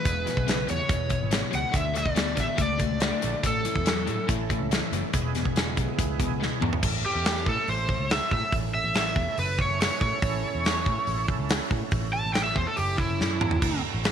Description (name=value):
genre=blues rock power trio and southern rock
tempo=142 BPM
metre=4/4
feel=straight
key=A major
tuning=A4 = 443 Hz
part: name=overdriven slide guitar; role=melody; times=0.0-4.3, 7.1-13.8 s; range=E4 to A5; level=-28 LUFS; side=right 1 dB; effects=tape echo
part: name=overdriven tonewheel organ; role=sustained chords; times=0.0-14.1 s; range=G#3 to A4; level=-36 LUFS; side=right 13 dB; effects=slow rotary speaker, chorus vibrato
part: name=distorted electric guitar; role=riff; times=0.0-6.8 s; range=E2 to B3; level=-31 LUFS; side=left 10 dB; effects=overdrive
part: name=vintage muted picked electric bass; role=bass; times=0.1-14.1 s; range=E1 to A2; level=-31 LUFS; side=right 1 dB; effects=none
part: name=big rock drum kit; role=drums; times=0.1-14.1 s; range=crash cymbal, hi-hat, kick drum, snare drum, toms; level=-27 LUFS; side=equal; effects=none
room=light reverb, studio reverb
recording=1960s-style stereo with parts hard left and right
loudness=-23 LUFS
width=side -8 dB against mid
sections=0.0-6.8 A section; 6.8-14.1 B section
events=drum fill 6.4-6.8, 13.2-13.6; electric slide guitar solo 6.8-14.1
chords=0.1 E; 1.7 D; 3.4 A; 5.1 E; 6.8 A